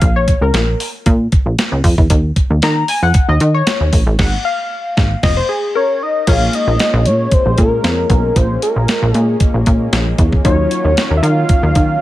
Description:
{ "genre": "early-eighties boogie funk", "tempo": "115 BPM", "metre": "4/4", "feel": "straight", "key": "Bb minor", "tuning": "A4 = 437 Hz", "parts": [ { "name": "funky polysynth comp", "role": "accompaniment", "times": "0.0-12.0 s", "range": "Gb3 to Bb5", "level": "-20 LUFS", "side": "left 4 dB", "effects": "chorus" }, { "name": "plucky analog bass", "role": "bass", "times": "0.0-12.0 s", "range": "F1 to Eb3", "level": "-14 LUFS", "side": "equal", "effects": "none" }, { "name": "crisp 8-bit digital drum machine", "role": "drums", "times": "0.0-11.9 s", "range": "crash cymbal, hi-hat, kick drum, snare drum", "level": "-15 LUFS", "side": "equal", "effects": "none" }, { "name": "fat analog lead", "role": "melody", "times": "5.8-12.0 s", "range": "Bb4 to F5", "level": "-17 LUFS", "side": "left 1 dB", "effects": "chorus" }, { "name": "lush unison pad", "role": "sustained chords", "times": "6.3-12.0 s", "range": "Eb3 to F4", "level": "-27 LUFS", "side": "right 1 dB", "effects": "chorus" } ], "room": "little or no reverb", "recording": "none", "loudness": "-12 LUFS", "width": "side -15 dB against mid", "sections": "0.0-6.3 A section; 6.3-12.0 B section", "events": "analog polysynth solo 0.0-6.3; band accent 4.2-6.3", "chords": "0.0 Bbm; 2.1 Eb5; 4.2 Fm/Ab; 5.2 Fsus4; 6.3 Bbm7; 10.4 Ebm9" }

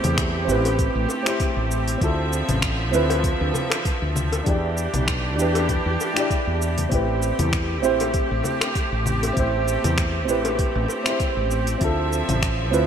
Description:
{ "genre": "sunset chillout", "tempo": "98 BPM", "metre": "4/4", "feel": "swing 55% on 16ths", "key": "A minor", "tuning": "A4 = 441 Hz", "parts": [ { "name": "dark baby grand piano", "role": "accompaniment", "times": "0.0-12.9 s", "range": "C4 to D5", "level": "-25 LUFS", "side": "right 2 dB", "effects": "auto-pan, ping-pong delay" }, { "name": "clear studio string section", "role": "sustained chords", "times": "0.0-12.9 s", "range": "D3 to E5", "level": "-27 LUFS", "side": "right 1 dB", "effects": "none" }, { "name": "woody fretless electric bass", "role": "bass", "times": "0.0-12.9 s", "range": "A1 to E2", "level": "-24 LUFS", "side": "equal", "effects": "lush chorus" }, { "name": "smooth R&B drum kit", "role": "drums", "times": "0.0-12.9 s", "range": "cabasa, congas, finger snaps, hi-hat", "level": "-28 LUFS", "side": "left 2 dB", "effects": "gated reverb" }, { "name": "electronic kick drum", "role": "drums", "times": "0.2-12.6 s", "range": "none", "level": "-25 LUFS", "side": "equal", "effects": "none" }, { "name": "bongos", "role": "percussion", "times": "0.7-11.0 s", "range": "none", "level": "-33 LUFS", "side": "left 4 dB", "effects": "none" } ], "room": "moderate lush hall reverb, RT60 2.7 s", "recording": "bright 1980s-style digital production", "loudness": "-20 LUFS", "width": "side -8 dB against mid", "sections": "0.0-12.9 A section", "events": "none", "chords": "0.0 Am9; 2.0 Dm9; 4.5 Em7; 6.9 Am9; 11.8 Dm9" }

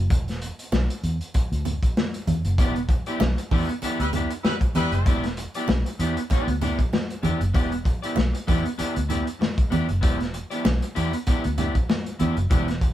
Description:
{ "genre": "funk", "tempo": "97 BPM", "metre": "4/4", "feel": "swing 56% on 16ths", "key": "E minor", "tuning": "A4 = 435 Hz", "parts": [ { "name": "vintage muted fingered electric bass", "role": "bass", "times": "0.0-12.9 s", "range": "E1 to E2", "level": "-25 LUFS", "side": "equal", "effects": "none" }, { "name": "crunchy breakbeat drum kit", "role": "drums", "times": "0.1-12.9 s", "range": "hi-hat, kick drum, snare drum", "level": "-24 LUFS", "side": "equal", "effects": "none" }, { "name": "congas", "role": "percussion", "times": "0.1-12.7 s", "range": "none", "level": "-32 LUFS", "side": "right 3 dB", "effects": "none" }, { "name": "electric guitar at the edge of break-up", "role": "accompaniment", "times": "2.6-12.9 s", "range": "B3 to D5", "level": "-28 LUFS", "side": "equal", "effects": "none" }, { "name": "warm horn section", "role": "second line", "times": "4.0-5.2 s", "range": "G3 to B4", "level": "-28 LUFS", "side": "left 2 dB", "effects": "none" } ], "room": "light reverb", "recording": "band playing live in one room", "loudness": "-21 LUFS", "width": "side -12 dB against mid", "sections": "0.0-12.9 A section", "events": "break 0.0-2.6; band accent 2.6-5.1", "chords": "0.0 Em7" }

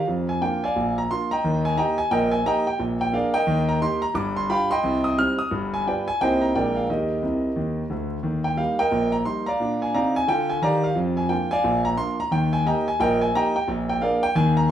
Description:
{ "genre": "jazz, stride piano", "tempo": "176 BPM", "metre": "4/4", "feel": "swing 61% on 8ths", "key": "Eb major", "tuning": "A4 = 444 Hz", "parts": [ { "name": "warm concert grand piano", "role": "solo", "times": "0.0-14.7 s", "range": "G1 to F6", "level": "-20 LUFS", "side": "equal", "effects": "none" } ], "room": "moderate large studio reverb, RT60 1.2 s", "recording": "band playing live in one room, vinyl crackle", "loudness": "-20 LUFS", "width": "side -10 dB against mid", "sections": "0.0-8.2 A section; 8.2-14.7 A section", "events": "grand piano fill 7.2-8.2", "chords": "0.1 Bb7/F; 1.4 Eb; 2.8 Bb7; 3.5 Eb; 4.2 G5; 4.8 Cm; 5.5 G7; 6.2 Cm7; 6.5 Bb7; 6.9 Eb; 9.6 Bb; 11.0 Bb7/F; 12.3 Eb; 13.7 Bb7" }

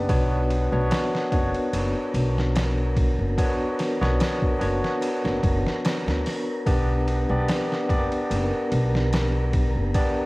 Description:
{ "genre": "trip hop", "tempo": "73 BPM", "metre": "4/4", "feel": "swing 54% on 16ths", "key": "B harmonic minor", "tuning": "A4 = 441 Hz", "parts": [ { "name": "barky tine electric piano", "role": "accompaniment", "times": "0.0-10.3 s", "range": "B3 to D5", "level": "-25 LUFS", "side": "equal", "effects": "harmonic tremolo, tape echo" }, { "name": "upright bass", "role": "bass", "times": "0.0-9.9 s", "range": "F#1 to D2", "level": "-25 LUFS", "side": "equal", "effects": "none" }, { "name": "wind-like tuned noise texture", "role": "texture", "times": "0.0-10.3 s", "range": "A#4", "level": "-33 LUFS", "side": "equal", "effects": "built-in reverb" }, { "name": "trip hop sampler-style drum kit", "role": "drums", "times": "0.1-10.2 s", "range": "hi-hat, kick drum, ride cymbal, snare drum", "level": "-27 LUFS", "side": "equal", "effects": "overdrive, small room ambience" } ], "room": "digital ambience", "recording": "home recording on cassette, vinyl crackle", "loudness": "-21 LUFS", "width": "side -22 dB against mid", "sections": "0.0-10.3 A section", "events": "none", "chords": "0.1 Bmadd9; 6.7 G" }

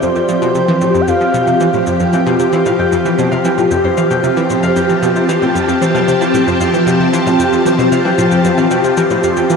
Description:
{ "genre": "ambient, sequencer-driven space music", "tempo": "114 BPM", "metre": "4/4", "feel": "straight", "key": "F major", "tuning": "A4 = 440 Hz", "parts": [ { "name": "expressive synth lead", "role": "melody", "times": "0.0-1.9 s", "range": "C5 to G5", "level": "-19 LUFS", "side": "right 1 dB", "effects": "chorus, tape echo" }, { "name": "phased string machine", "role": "sustained chords", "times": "0.0-9.6 s", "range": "F3 to A5", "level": "-13 LUFS", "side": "equal", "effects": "ensemble chorus, phaser" }, { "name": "analog pluck", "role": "riff", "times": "0.0-9.6 s", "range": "F2 to F3", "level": "-18 LUFS", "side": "right 1 dB", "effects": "chorus, tape echo" }, { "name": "congas and cabasa", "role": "percussion", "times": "0.0-9.6 s", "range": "none", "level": "-28 LUFS", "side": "left 2 dB", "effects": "tape echo" }, { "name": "concert harp", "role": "arpeggios", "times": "2.1-9.6 s", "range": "F4 to G5", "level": "-18 LUFS", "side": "left 4 dB", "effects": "auto-pan, tape echo" } ], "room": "wet huge ambient reverb, RT60 8.0 s", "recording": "dreamy mix soaked in reverb", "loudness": "-11 LUFS", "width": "side -5 dB against mid", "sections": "0.0-9.6 A section", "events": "fade-in on drum 0.0-9.6", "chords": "0.0 Fsus2" }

